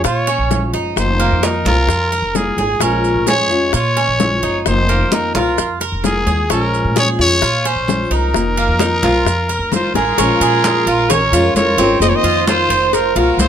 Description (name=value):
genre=latin, Cuban son and guajira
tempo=130 BPM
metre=4/4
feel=straight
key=Bb minor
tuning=A4 = 440 Hz
part: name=growling trumpet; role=melody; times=0.0-13.5 s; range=Ab4 to Eb5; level=-18 LUFS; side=left 1 dB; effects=none
part: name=flamenco guitar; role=accompaniment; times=0.0-13.5 s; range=Eb3 to F4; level=-20 LUFS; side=left 3 dB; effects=none
part: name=Cuban tres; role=arpeggios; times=0.0-13.5 s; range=Bb3 to C5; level=-20 LUFS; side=right 7 dB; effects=none
part: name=upright bass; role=bass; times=0.0-13.5 s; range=F1 to Bb2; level=-20 LUFS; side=equal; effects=none
part: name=bongos and cowbell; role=percussion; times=0.0-13.5 s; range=none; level=-22 LUFS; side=left 12 dB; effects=none
part: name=congas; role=percussion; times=0.0-13.5 s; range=none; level=-22 LUFS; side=equal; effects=none
part: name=maracas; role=percussion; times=0.1-13.5 s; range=none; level=-26 LUFS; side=right 8 dB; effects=none
part: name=clear chamber violin section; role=second line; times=9.7-13.5 s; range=F4 to C5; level=-22 LUFS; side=right 2 dB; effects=none
room=light reverb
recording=close, detailed microphones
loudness=-13 LUFS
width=side -9 dB against mid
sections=0.0-10.2 A section; 10.2-13.5 B section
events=drum fill 9.9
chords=0.0 Bbm7; 1.0 F7sus4; 2.8 Bbm7; 4.7 F7sus4; 6.5 Bbm7; 8.3 F7sus4; 10.2 Bbm7; 12.0 F7sus4